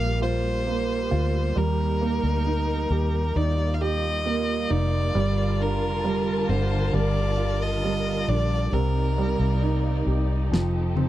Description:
pop ballad; 67 BPM; 4/4; straight; A4 = 440 Hz
rich violin; melody; 0.0-10.1 s; Bb4 to F5; -29 LUFS; left 1 dB
clear baby grand piano; accompaniment; 0.0-11.1 s; C3 to G4; -28 LUFS; right 6 dB
warm studio string section; sustained chords; 0.0-11.1 s; C3 to A5; -32 LUFS; left 1 dB
vintage muted fingered electric bass; bass; 0.0-11.1 s; F1 to Eb2; -25 LUFS; left 1 dB
smooth R&B drum kit; drums; 10.5-11.1 s; snare drum, toms; -24 LUFS; left 3 dB
light reverb; dry, close 1970s-style studio recording; -22 LUFS; side -14 dB against mid
0.0-11.1 A section
drum fill 10.5-11.1
0.0 Bb6; 1.6 Eb; 5.1 Gm7; 8.7 Cm7; 10.5 F7

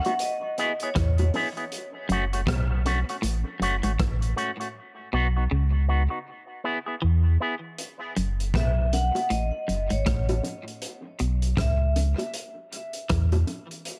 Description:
dub reggae; 79 BPM; 4/4; swing 60% on 16ths; F# dorian; A4 = 440 Hz
vibraphone with medium hard mallets; melody; 0.0-1.3, 8.6-12.0 s; C#5 to F#5; -34 LUFS; equal; dub echo
crunchy breakbeat drum kit; drums; 0.0-14.0 s; hi-hat, kick drum, rim click; -32 LUFS; equal
electric guitar with an envelope filter; accompaniment; 0.1-7.5 s; A3 to G#4; -33 LUFS; equal; dub echo
bongos; percussion; 0.1-3.1, 8.9-13.7 s; -37 LUFS; equal; dub echo
clean electric guitar; riff; 0.9-13.3 s; F#2 to E3; -34 LUFS; equal; warbly pitch drift, dub echo
warm sub bass; bass; 1.0-13.4 s; F#1 to E2; -26 LUFS; equal
light reverb, studio reverb; -26 LUFS; mono
0.0-14.0 A section
part muted 1.7-7.8; break 7.8-8.5
0.2 E; 1.7 F#m; 4.7 B; 6.3 E; 7.8 F#m; 10.8 Bsus24; 12.3 N.C.

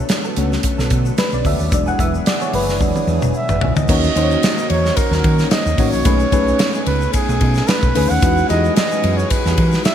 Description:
polished 1980s jazz-funk pop; 111 BPM; 4/4; swing 54% on 16ths; A4 = 441 Hz
FM electric piano; accompaniment; 0.0-9.9 s; D3 to F#5; -21 LUFS; left 3 dB; analog chorus
lush unison pad; sustained chords; 0.0-9.9 s; D3 to G#4; -27 LUFS; equal; chorus
electric guitar at the edge of break-up; riff; 0.1-9.8 s; E3 to C#5; -28 LUFS; right 6 dB; ensemble chorus
modern studio drum kit; drums; 0.1-9.9 s; crash cymbal, hi-hat, kick drum, ride cymbal, snare drum, toms; -19 LUFS; equal; gated reverb
tube shaker; percussion; 0.1-9.9 s; -36 LUFS; left 8 dB
hollow-body short-scale fingered electric bass; bass; 0.4-9.8 s; E1 to E3; -19 LUFS; equal
breathy flugelhorn; melody; 3.4-9.9 s; G#4 to F#5; -21 LUFS; right 3 dB
light reverb; bright 1980s-style digital production; -14 LUFS; side -9 dB against mid
0.0-3.9 A section; 3.9-9.9 B section
FM electric piano solo 0.0-3.9; drum fill 2.8-3.9
0.0 Bm7; 1.7 E7; 3.9 D#m7; 6.1 B13; 8.2 Emaj9

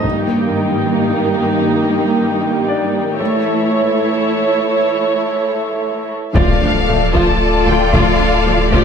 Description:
cinematic, hybrid orchestral and electronic film score; 76 BPM (dotted quarters); 6/8; straight; A4 = 440 Hz
warm symphonic viola section; accompaniment; 0.0-8.8 s; F3 to C#5; -18 LUFS; right 2 dB
brassy analog pad; sustained chords; 0.0-8.8 s; Eb3 to G5; -19 LUFS; left 1 dB; chorus
warm symphonic cello section; bass; 0.0-8.8 s; G2 to G4; -21 LUFS; right 3 dB
taiko ensemble; drums; 0.0-8.8 s; -20 LUFS; left 1 dB
bright grand piano; texture; 0.0-8.8 s; D4 to Eb5; -27 LUFS; left 5 dB; tape echo
rich symphonic violin section; melody; 6.4-8.8 s; D5 to A5; -20 LUFS; left 4 dB
warm symphonic violin section; second line; 6.4-8.8 s; A4 to D5; -20 LUFS; left 4 dB
rich symphonic double bass section; bass; 6.4-8.8 s; D2; -22 LUFS; right 4 dB
warm sub bass; bass; 6.4-8.8 s; D1; -20 LUFS; left 1 dB
impact; sound effects; 6.4-7.9 s; -24 LUFS; left 2 dB
mellow French horn section; sustained chords; 6.9-8.6 s; A3 to F4; -24 LUFS; left 7 dB
moderate scoring stage reverb, RT60 2.0 s; high-pass filter; -13 LUFS; side -7 dB against mid
0.0-6.4 A section; 6.4-8.8 B section
build-up 0.0-6.4; filter sweep 0.0-6.4; impact 6.4-7.9
0.0 Eb/G; 3.2 A; 6.4 Dm

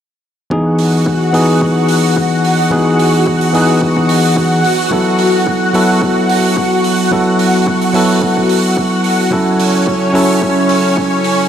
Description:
nu-disco, nu disco; 109 BPM; 4/4; swing 55% on 16ths; A4 = 440 Hz
bell-like tine electric piano; accompaniment; 0.5-11.5 s; E3 to A4; -12 LUFS; equal; vintage 12-bit sampler grit, sidechain pumping, low-pass filter, analog delay
lush unison pad; sustained chords; 0.5-11.5 s; C#4 to F#5; -15 LUFS; equal; chorus, phaser, sidechain pumping
electronic kick drum; drums; 0.5-11.1 s; -22 LUFS; left 1 dB; high-pass filter on kick, high-pass filter on room
hi-hat; drums; 0.8-11.4 s; -23 LUFS; right 7 dB
wet huge ambient reverb, RT60 8.2 s; dreamy mix soaked in reverb; -10 LUFS; side -9 dB against mid
0.5-11.5 A section
filter sweep on tine electric piano 0.5-11.5
0.5 Emaj7; 4.6 B7sus4; 9.3 A6

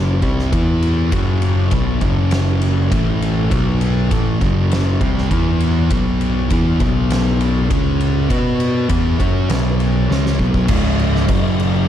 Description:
stoner and doom metal; 100 BPM; 4/4; straight; A4 = 440 Hz
thick fuzz guitar; riff; 0.0-11.9 s; C#2 to B4; -18 LUFS; equal; distortion
overdriven picked electric bass; bass; 0.0-11.8 s; C#1 to B2; -19 LUFS; equal
oversized low-tuned drum kit; drums; 0.2-11.7 s; crash cymbal, kick drum, ride cymbal, snare drum; -20 LUFS; equal
light reverb, studio reverb; dark, warm production; -14 LUFS; side -10 dB against mid
0.0-10.7 A section; 10.7-11.9 B section
drum fill 10.1-10.7
0.0 F#5; 0.5 E5; 1.1 F#5; 2.9 A5; 3.5 B5; 4.1 F#5; 5.3 E5; 5.9 B5; 7.7 C#5; 8.3 B5; 10.7 C#5; 11.3 F#5

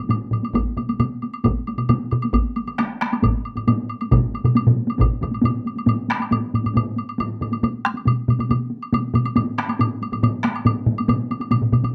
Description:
japanese traditional, taiko drum ensemble; 137 BPM; 4/4; straight
taiko ensemble; percussion; 0.1-11.9 s; -26 LUFS; equal
taiko ensemble; percussion; 0.1-11.9 s; -26 LUFS; equal
woodblock; percussion; 0.1-11.9 s; -31 LUFS; equal
taiko ensemble; percussion; 0.5-5.1 s; -25 LUFS; equal
taiko ensemble; percussion; 0.8-11.9 s; -22 LUFS; equal
wet studio ambience, RT60 0.5 s; rough home demo mix; -21 LUFS; mono
0.0-5.9 A section; 5.9-11.9 B section
speeding up 0.0-11.9

